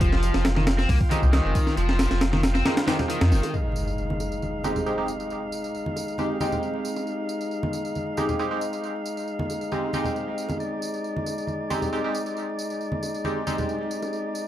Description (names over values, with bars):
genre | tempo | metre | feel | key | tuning
breakbeat, breaks | 136 BPM | 4/4 | straight | unclear | A4 = 440 Hz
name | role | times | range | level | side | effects
tonewheel organ | sustained chords | 0.0-14.5 s | Ab3 to G5 | -30 LUFS | left 1 dB | overdrive, stopped rotary speaker, vintage 12-bit sampler grit, sidechain pumping, low-pass filter
cranked stack guitar | riff | 0.0-3.5 s | Eb3 to C4 | -28 LUFS | left 1 dB | overdrive, tube saturation, digital delay
band-passed chord stab | stabs | 0.0-14.5 s | Ab3 to G4 | -30 LUFS | right 1 dB | phaser, wide subtle chorus, digital delay
saturated sub bass | bass | 0.0-3.4 s | F1 to F2 | -22 LUFS | equal | none
breakbeat sampler-style drum kit | drums | 0.0-3.5 s | hi-hat, kick drum, snare drum | -24 LUFS | equal | none
tambourine | drums | 0.0-14.4 s | none | -41 LUFS | right 4 dB | overdrive
congas and bongos | percussion | 0.6-14.1 s | none | -33 LUFS | equal | none
impact | sound effects | 3.5-5.3 s | none | -32 LUFS | equal | none
room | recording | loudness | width
light reverb | vinyl crackle | -23 LUFS | side -12 dB against mid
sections
0.0-3.5 A section; 3.5-14.5 B section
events
filter sweep on synth stab 0.0-3.5; kick drops out 2.7-3.5; impact 3.5-5.3; filter sweep on tonewheel organ 3.5-14.5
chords
0.0 Fm7